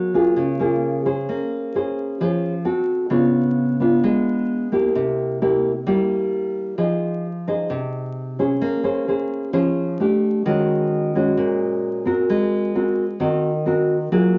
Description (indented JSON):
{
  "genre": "bossa nova",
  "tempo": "131 BPM",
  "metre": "4/4",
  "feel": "straight",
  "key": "Bb minor",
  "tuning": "A4 = 435 Hz",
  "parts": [
    { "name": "nylon-string guitar", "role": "solo", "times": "0.0-14.4 s", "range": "Bb2 to C5", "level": "-21 LUFS", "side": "equal", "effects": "none" }
  ],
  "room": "wet club ambience, RT60 0.5 s",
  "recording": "vinyl crackle, nothing above 7.5 kHz",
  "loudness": "-21 LUFS",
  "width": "mono",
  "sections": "0.0-14.4 A section",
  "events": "none",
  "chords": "0.0 Gbmaj9; 1.3 Bbm9; 2.7 F#dim/C; 3.1 Db7b9; 5.0 C7; 6.8 Fm7; 8.6 Bbm9; 10.0 A7sus4; 10.5 Ebm7; 12.3 Ab9"
}